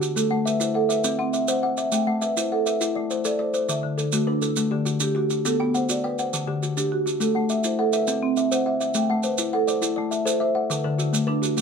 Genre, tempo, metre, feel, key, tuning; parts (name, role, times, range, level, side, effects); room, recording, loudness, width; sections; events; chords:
southern african traditional, mbira-style interlocking cycle; 137 BPM (dotted quarters); 12/8; straight; A dorian; A4 = 440 Hz
kalimba; arpeggios; 0.0-11.6 s; D3 to G5; -24 LUFS; left 4 dB
marimba with medium mallets; arpeggios; 0.0-11.6 s; D3 to G5; -25 LUFS; right 3 dB
maracas; percussion; 0.0-11.6 s; -29 LUFS; right 6 dB
moderate small room reverb, RT60 0.6 s; minimal, uncompressed stereo recording; -21 LUFS; side -6 dB against mid
0.0-9.0 A section; 9.0-11.6 B section
0.2 Am; 1.0 C; 1.9 Am; 3.7 D; 5.4 Bm; 6.3 D; 7.2 Am; 8.1 C; 9.0 Am; 10.7 D